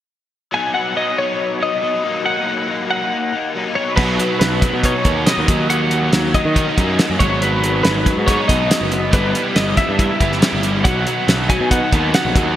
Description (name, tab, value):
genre	indie rock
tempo	140 BPM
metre	4/4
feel	straight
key	B major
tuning	A4 = 441 Hz
part	twelve-string electric guitar	melody	0.5-12.6 s	B4 to G#5	-21 LUFS	left 1 dB	analog chorus
part	overdriven electric guitar	riff	0.5-12.6 s	F#3 to E4	-22 LUFS	left 4 dB	ensemble chorus
part	biting overdriven guitar	riff	4.0-12.6 s	B2 to G#4	-22 LUFS	right 5 dB	wide subtle chorus
part	fuzz picked electric bass	bass	4.0-12.6 s	F#1 to D#3	-20 LUFS	equal	overdrive
part	cloth-damped thuddy drum kit	drums	4.0-12.5 s	crash cymbal, hi-hat, kick drum, snare drum	-18 LUFS	equal	none
room	moderate lush hall reverb, RT60 1.9 s, studio ambience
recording	bright 1980s-style digital production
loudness	-14 LUFS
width	side -12 dB against mid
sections	0.5-4.0 A section; 4.0-12.6 B section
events	none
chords	0.5 B; 2.0 D#m; 3.8 B; 5.5 D#m; 7.2 G#m7; 9.1 Em/G; 10.8 B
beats	| 0.53 0.96 1.39 1.82 | 2.25 2.69 3.12 3.55 | 3.98 4.41 4.84 5.27 | 5.70 6.13 6.56 6.99 | 7.42 7.85 8.28 8.71 | 9.14 9.57 9.99 10.42 | 10.85 11.28 11.71 12.13 | 12.56